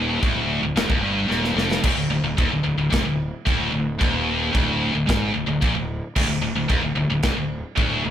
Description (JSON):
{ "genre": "heavy metal", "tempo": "111 BPM", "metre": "4/4", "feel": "straight", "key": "D minor", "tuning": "A4 = 441 Hz", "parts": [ { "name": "high-gain distorted guitar", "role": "riff", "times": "0.0-8.1 s", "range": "D2 to Bb2", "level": "-22 LUFS", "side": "left 1 dB", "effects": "distortion" }, { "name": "fuzz fingered electric bass", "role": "bass", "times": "0.0-8.1 s", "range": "D1 to Bb1", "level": "-29 LUFS", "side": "equal", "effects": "overdrive" }, { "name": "modern studio drum kit", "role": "drums", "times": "0.2-7.9 s", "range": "china cymbal, crash cymbal, kick drum, snare drum", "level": "-24 LUFS", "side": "equal", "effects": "none" } ], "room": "moderate studio ambience, RT60 0.5 s", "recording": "rough rehearsal-room recording", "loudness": "-19 LUFS", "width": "side -10 dB against mid", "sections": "0.0-8.1 A section", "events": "drum fill 1.3-1.9", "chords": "0.0 Dm", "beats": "0.23 0.77 1.31 | 1.85 2.39 2.93 3.47 | 4.01 4.55 5.08 5.62 | 6.16 6.70 7.24 7.78" }